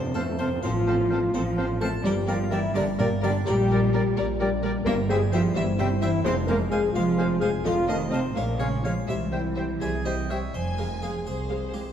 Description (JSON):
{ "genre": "cinematic, playful, whimsical film cue", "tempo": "85 BPM (dotted quarters)", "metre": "6/8", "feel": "straight", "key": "F minor from 4.9 s", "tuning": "A4 = 439 Hz", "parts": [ { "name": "harpsichord", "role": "melody", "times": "0.0-11.9 s", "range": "G4 to C6", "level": "-38 LUFS", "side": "right 2 dB", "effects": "none" }, { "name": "concert harp", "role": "arpeggios", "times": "0.0-11.9 s", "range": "F2 to D5", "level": "-32 LUFS", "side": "left 5 dB", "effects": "none" }, { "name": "rich studio double bass section", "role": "bass", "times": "0.0-11.9 s", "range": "F1 to F2", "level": "-29 LUFS", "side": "right 3 dB", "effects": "none" }, { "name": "warm studio cello section", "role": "bass", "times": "0.0-11.8 s", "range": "C2 to C4", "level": "-30 LUFS", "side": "right 2 dB", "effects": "none" }, { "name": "bright small flute group", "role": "second line", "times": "0.1-10.4 s", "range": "G5 to A5", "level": "-40 LUFS", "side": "left 4 dB", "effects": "none" }, { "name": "clear oboe", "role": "second line", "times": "0.1-10.5 s", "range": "D5 to Ab5", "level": "-39 LUFS", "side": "right 1 dB", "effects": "none" }, { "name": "rich studio violin section", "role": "melody", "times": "0.2-11.8 s", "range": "C5 to F5", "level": "-39 LUFS", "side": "left 3 dB", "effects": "none" }, { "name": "bright clarinet", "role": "second line", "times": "0.2-10.4 s", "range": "Bb4 to Eb5", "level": "-39 LUFS", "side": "left 2 dB", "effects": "none" }, { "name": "clear studio violin section", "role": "second line", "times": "0.2-11.9 s", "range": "A4 to Ab5", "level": "-39 LUFS", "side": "left 3 dB", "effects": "none" }, { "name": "rich studio viola section", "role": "accompaniment", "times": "0.2-11.8 s", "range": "G3 to Ab4", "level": "-33 LUFS", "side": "right 1 dB", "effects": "none" }, { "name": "dark French horn section", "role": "sustained chords", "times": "0.2-10.3 s", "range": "A3 to C5", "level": "-28 LUFS", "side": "left 2 dB", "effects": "none" } ], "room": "moderate scoring stage reverb, RT60 1.9 s", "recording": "dark, warm production", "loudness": "-22 LUFS", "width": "side -9 dB against mid", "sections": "0.0-10.5 A section; 10.5-11.9 B section", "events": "none", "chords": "0.0 F; 0.6 F/A; 2.0 Gm; 3.5 Gm/Bb; 4.9 C7/G; 6.3 Fm; 7.7 F7; 8.4 Bbm7; 9.1 C; 10.5 Fm" }